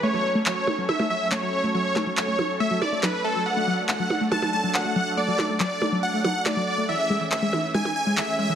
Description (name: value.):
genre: uplifting trance.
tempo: 140 BPM.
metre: 4/4.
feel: straight.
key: F# minor.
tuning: A4 = 437 Hz.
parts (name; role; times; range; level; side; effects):
supersaw chords; melody; 0.0-8.6 s; A4 to A5; -25 LUFS; equal; tape echo.
filtered supersaw swell; sustained chords; 0.0-8.6 s; E3 to A4; -31 LUFS; right 1 dB; none.
wide unison pluck; arpeggios; 0.0-8.5 s; E3 to A3; -28 LUFS; left 1 dB; tape echo.
electronic handclaps and percussion blips; drums; 0.5-8.3 s; none; -28 LUFS; right 2 dB; none.
room: moderate huge ambient reverb, RT60 4.6 s.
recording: heavily compressed radio sound.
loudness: -21 LUFS.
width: side -9 dB against mid.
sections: 0.0-8.6 A section.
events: none.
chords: 0.0 F#m; 3.5 D; 6.9 Amaj7.